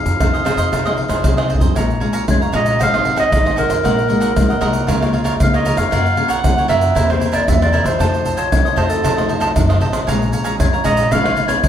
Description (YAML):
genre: samba and choro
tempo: 116 BPM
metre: 4/4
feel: straight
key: Bb minor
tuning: A4 = 441 Hz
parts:
  - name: warm clarinet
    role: melody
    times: 0.0-11.7 s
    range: A4 to Gb5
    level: -18 LUFS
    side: right 1 dB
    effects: plate reverb
  - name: nylon-string guitar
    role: accompaniment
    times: 0.0-11.7 s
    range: F2 to Ab4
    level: -22 LUFS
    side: left 2 dB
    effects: none
  - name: upright bass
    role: bass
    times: 0.1-11.7 s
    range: Gb1 to Gb2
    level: -21 LUFS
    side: equal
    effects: none
  - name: tube shaker, surdo, pandeiro and tamborim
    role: percussion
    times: 0.1-11.7 s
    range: none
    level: -18 LUFS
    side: equal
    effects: none
  - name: cavaquinho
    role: accompaniment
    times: 0.2-11.6 s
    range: E4 to Bb5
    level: -23 LUFS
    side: right 3 dB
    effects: none
room: wet studio reverb, RT60 0.9 s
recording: heard from further back in the room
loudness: -13 LUFS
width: side -9 dB against mid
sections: 0.0-1.8 A section; 1.8-11.7 B section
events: drum fill 1.4-1.8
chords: 0.0 Fm7; 1.8 Bbm7; 2.8 Ab7; 3.8 Gb69/Bb; 4.9 Db6; 5.9 Gbmaj7; 7.0 C7/E; 8.0 F7b9; 10.1 Bbm7; 11.1 Db7/Ab